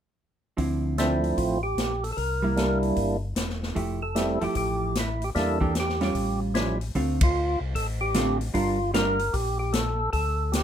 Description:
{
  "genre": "soul jazz organ trio",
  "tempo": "150 BPM",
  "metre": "4/4",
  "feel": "swing 65% on 8ths",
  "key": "D minor",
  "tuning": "A4 = 440 Hz",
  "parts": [
    { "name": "vintage hollow-body jazz guitar", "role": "accompaniment", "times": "0.6-9.2 s", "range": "D3 to Bb4", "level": "-28 LUFS", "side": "right 3 dB", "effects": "none" },
    { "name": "mellow tonewheel organ", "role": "bass", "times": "0.6-10.6 s", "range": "E1 to E2", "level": "-30 LUFS", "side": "left 1 dB", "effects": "slow rotary speaker" },
    { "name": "swinging big-band drum kit", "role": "drums", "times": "0.6-10.6 s", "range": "hi-hat, kick drum, ride cymbal, snare drum", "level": "-29 LUFS", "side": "left 1 dB", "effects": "none" },
    { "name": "percussive tonewheel organ", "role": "melody", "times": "1.0-10.6 s", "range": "F3 to Bb4", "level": "-26 LUFS", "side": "right 1 dB", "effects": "slow rotary speaker, overdrive" }
  ],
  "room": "light reverb",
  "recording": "minimal, uncompressed stereo recording",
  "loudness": "-23 LUFS",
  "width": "side -9 dB against mid",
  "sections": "0.6-7.0 A section; 7.0-10.6 B section",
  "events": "band accent 7.2",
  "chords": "0.6 Dm9; 2.2 C7; 3.8 Fmaj9; 5.4 Em7b5; 6.2 A7b13; 7.0 Dm7; 8.5 Gm7"
}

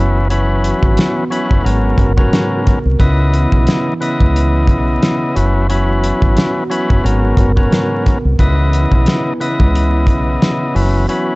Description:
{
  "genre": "hip hop, boom-bap hip-hop",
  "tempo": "89 BPM",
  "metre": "4/4",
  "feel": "swing 55% on 16ths",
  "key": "C# dorian",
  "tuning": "A4 = 440 Hz",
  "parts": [
    { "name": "overdriven tonewheel organ", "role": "accompaniment", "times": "0.0-11.4 s", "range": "G#2 to D#5", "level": "-17 LUFS", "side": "left 1 dB", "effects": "high-pass filter, low-pass filter" },
    { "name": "dark analog pad", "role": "sustained chords", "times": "0.0-11.4 s", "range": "C#3 to A#4", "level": "-22 LUFS", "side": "right 2 dB", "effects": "lush chorus, high-pass filter, low-pass filter" },
    { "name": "deep dub fingered electric bass", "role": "bass", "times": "0.0-11.0 s", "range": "F#1 to C#2", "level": "-14 LUFS", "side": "equal", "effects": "none" },
    { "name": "cloth-damped thuddy drum kit", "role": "drums", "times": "0.3-11.3 s", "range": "hi-hat, kick drum, snare drum", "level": "-15 LUFS", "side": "equal", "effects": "vintage 12-bit sampler grit" }
  ],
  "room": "little or no reverb",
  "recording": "dark, warm production, vinyl crackle, nothing above 8.0 kHz",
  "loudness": "-11 LUFS",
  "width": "side -24 dB against mid",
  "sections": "0.0-11.4 A section",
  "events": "break 11.1",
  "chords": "0.0 F#7sus4; 1.6 G#m11; 3.0 C#m9; 5.4 F#7sus4; 7.0 G#m11; 8.4 C#m9; 10.8 F#7sus4"
}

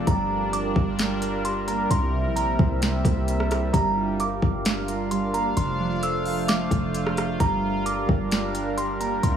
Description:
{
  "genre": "hip hop, atmospheric cloud-rap",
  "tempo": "131 BPM",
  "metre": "4/4",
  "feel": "half-time",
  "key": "G dorian",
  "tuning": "A4 = 439 Hz",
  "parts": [
    { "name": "sweeping resonant pad", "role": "sustained chords", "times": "0.0-9.4 s", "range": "G3 to F5", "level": "-28 LUFS", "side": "equal", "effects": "chorus, sidechain pumping" },
    { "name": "warbly lo-fi synth keys", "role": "arpeggios", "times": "0.0-9.2 s", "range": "C3 to F5", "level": "-30 LUFS", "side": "right 2 dB", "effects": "chorus, low-pass filter, tape echo" },
    { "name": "warm 808-style bass", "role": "bass", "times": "0.0-9.4 s", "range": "F1 to C2", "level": "-28 LUFS", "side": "equal", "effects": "none" },
    { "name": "delicate synth tine bell", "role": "melody", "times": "0.1-9.4 s", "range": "Bb5 to E6", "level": "-29 LUFS", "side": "right 2 dB", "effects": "chorus, low-pass filter, tape echo" },
    { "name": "smooth R&B drum kit", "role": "drums", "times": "0.1-9.3 s", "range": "hi-hat, kick drum, rim click, snare drum", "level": "-26 LUFS", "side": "equal", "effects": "overdrive" }
  ],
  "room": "light reverb",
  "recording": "studio ambience",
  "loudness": "-22 LUFS",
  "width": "side -8 dB against mid",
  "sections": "0.0-9.4 A section",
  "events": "none",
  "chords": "0.1 Gm7; 1.9 C7; 3.7 Gm7; 5.6 F6; 7.4 Gm7"
}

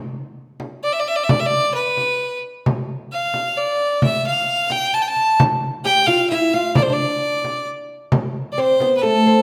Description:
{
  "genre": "medieval dance",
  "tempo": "132 BPM",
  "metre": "3/4",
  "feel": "straight",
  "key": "D dorian",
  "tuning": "A4 = 440 Hz",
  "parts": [
    { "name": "frame drum", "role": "percussion", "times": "0.6-9.0 s", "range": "none", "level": "-24 LUFS", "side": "equal", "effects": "none" },
    { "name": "bright fiddle", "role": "melody", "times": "0.8-9.4 s", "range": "A4 to A5", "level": "-20 LUFS", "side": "equal", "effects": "none" },
    { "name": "oud", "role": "second line", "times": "5.9-9.4 s", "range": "A3 to G4", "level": "-20 LUFS", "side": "equal", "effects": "none" }
  ],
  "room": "wet recital hall reverb, RT60 1.3 s",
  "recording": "none",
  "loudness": "-19 LUFS",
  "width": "mono",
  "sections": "0.0-9.4 A section",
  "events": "none",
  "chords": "none"
}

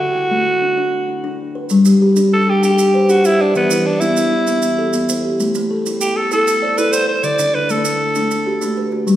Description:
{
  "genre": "southern african traditional, mbira-style interlocking cycle",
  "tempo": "130 BPM (dotted quarters)",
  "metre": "12/8",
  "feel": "straight",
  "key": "G major",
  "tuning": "A4 = 440 Hz",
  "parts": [
    { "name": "raspy alto saxophone", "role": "melody", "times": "0.0-8.9 s", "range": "B3 to D5", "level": "-17 LUFS", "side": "right 1 dB", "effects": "none" },
    { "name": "kalimba", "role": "arpeggios", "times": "0.0-9.2 s", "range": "D3 to D5", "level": "-17 LUFS", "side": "left 2 dB", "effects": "none" },
    { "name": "maracas", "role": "percussion", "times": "1.7-9.2 s", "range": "none", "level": "-27 LUFS", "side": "right 7 dB", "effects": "none" },
    { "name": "kalimba", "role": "arpeggios", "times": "1.9-9.2 s", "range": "D3 to F#5", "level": "-22 LUFS", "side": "right 2 dB", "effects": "none" }
  ],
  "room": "wet recital hall reverb, RT60 1.6 s",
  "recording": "recorded in a church or concert hall",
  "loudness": "-13 LUFS",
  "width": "side -12 dB against mid",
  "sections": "0.0-1.7 A section; 1.7-9.2 A section",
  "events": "none",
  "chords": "0.0 D; 1.7 G; 3.5 Em; 5.4 Am; 7.2 D"
}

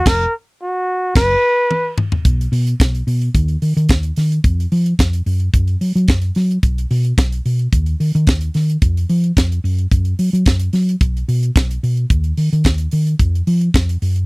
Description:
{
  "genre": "disco",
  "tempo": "110 BPM",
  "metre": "4/4",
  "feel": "straight",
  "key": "unclear",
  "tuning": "A4 = 437 Hz",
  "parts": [
    { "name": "mellow flugelhorn", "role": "melody", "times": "0.0-1.9 s", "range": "F#4 to B4", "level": "-15 LUFS", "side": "equal", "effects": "none" },
    { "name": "hollow-body short-scale fingered electric bass", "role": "bass", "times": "0.1-14.2 s", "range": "E#1 to F#3", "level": "-16 LUFS", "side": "equal", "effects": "none" },
    { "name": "tight funk drum kit", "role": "drums", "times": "0.1-14.3 s", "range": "crash cymbal, hi-hat, kick drum, snare drum, toms", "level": "-16 LUFS", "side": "equal", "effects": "none" }
  ],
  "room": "little or no reverb",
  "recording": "dry, close 1970s-style studio recording",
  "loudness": "-14 LUFS",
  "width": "side -29 dB against mid",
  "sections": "0.0-2.2 A section; 2.2-14.3 B section",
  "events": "band accent 0.1-2.2; drum fill 1.7-2.2",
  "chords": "0.1 F#maj7/E#; 0.9 F#sus4; 2.2 N.C."
}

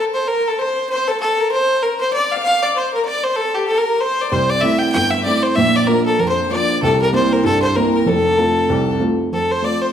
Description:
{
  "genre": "celtic folk, Celtic reel",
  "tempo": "192 BPM",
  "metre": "4/4",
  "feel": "swing 58% on 8ths",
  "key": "F major",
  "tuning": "A4 = 441 Hz",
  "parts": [
    { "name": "bright fiddle", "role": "melody", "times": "0.0-9.9 s", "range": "G4 to G5", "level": "-17 LUFS", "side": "equal", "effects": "none" },
    { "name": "clear fiddle", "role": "second line", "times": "0.0-9.9 s", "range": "G4 to G5", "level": "-23 LUFS", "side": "left 6 dB", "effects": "none" },
    { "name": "warm upright piano", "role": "accompaniment", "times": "4.3-9.9 s", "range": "F1 to F4", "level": "-17 LUFS", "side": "right 1 dB", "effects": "none" }
  ],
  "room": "wet recital hall reverb, RT60 1.3 s",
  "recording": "dark, warm production",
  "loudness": "-14 LUFS",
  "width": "side -9 dB against mid",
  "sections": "0.0-9.3 A section",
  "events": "none",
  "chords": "0.0 N.C.; 4.3 C6; 5.6 Bb; 6.8 C7; 8.1 F"
}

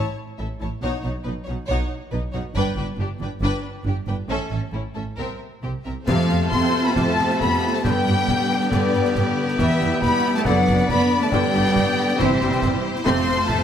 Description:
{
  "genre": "cinematic, heroic adventure film score",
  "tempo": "138 BPM",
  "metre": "4/4",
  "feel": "straight",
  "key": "F lydian from 6.1 s",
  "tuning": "A4 = 436 Hz",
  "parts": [
    { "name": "warm symphonic violin section", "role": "melody", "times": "0.0-13.6 s", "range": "C5 to C6", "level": "-28 LUFS", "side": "left 4 dB", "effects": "none" },
    { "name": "warm symphonic violin section", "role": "second line", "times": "0.0-13.6 s", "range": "E4 to D5", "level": "-30 LUFS", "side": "left 2 dB", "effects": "none" },
    { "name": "warm symphonic viola section", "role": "accompaniment", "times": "0.0-13.6 s", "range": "C3 to F4", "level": "-29 LUFS", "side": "equal", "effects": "none" },
    { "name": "rich symphonic double bass section", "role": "bass", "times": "0.0-13.6 s", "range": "F1 to G2", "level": "-26 LUFS", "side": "right 2 dB", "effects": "none" },
    { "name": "warm symphonic cello section", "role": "bass", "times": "0.0-13.6 s", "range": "G2 to C4", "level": "-26 LUFS", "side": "right 2 dB", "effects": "none" },
    { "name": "warm French horn section", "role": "sustained chords", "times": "6.0-13.2 s", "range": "C3 to C5", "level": "-28 LUFS", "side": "left 5 dB", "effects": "none" },
    { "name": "clear oboe", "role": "second line", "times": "6.1-13.6 s", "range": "C5 to A5", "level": "-30 LUFS", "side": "left 2 dB", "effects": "none" },
    { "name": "concert flute", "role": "second line", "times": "6.1-13.6 s", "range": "C5 to C6", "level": "-28 LUFS", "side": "left 3 dB", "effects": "none" },
    { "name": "warm clarinet", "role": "second line", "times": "6.1-13.6 s", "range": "A3 to C4", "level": "-28 LUFS", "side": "left 2 dB", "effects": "none" },
    { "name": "warm trombone section", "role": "sustained chords", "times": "6.1-13.2 s", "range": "C3 to B3", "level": "-30 LUFS", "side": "right 2 dB", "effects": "none" },
    { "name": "concert snare drum, clash cymbals and concert bass drum", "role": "drums", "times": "6.1-13.6 s", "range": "none", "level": "-28 LUFS", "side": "left 1 dB", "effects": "none" }
  ],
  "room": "moderate scoring stage reverb, RT60 1.9 s",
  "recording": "none",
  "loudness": "-19 LUFS",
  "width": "side -9 dB against mid",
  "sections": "0.0-6.1 A section; 6.1-13.6 B section",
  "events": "none",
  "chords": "0.0 A; 0.8 Badd9; 2.6 G; 4.3 A; 5.2 C7; 6.1 F; 7.8 G; 9.6 Em; 10.5 Bm/F#; 11.3 G; 12.2 C/G; 13.1 F"
}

